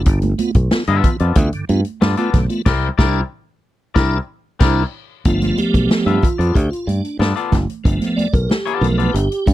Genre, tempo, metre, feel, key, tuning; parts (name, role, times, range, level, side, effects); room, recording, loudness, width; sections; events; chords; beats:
funk; 93 BPM; 4/4; straight; G mixolydian; A4 = 440 Hz
tonewheel organ; stabs; 0.0-9.5 s; G2 to D5; -20 LUFS; right 2 dB; chorus vibrato, slow rotary speaker
fingered electric bass; bass; 0.0-9.5 s; F#1 to G2; -18 LUFS; equal
swinging big-band drum kit; drums; 0.1-9.5 s; crash cymbal, hi-hat, kick drum, snare drum; -17 LUFS; equal
congas; percussion; 0.1-9.5 s; -26 LUFS; right 6 dB
twangy electric guitar; accompaniment; 0.9-9.1 s; B3 to E5; -21 LUFS; left 9 dB
little or no reverb; dry, close 1970s-style studio recording; -15 LUFS; side -14 dB against mid
0.0-5.3 A section; 5.3-9.5 B section
band accent 2.7-5.3; tonewheel organ solo 5.3-9.5
0.0 G9; 2.7 C9; 5.3 G9
| 0.07 0.72 1.37 2.02 | 2.66 3.31 3.96 4.61 | 5.25 5.90 6.55 7.20 | 7.85 8.50 9.14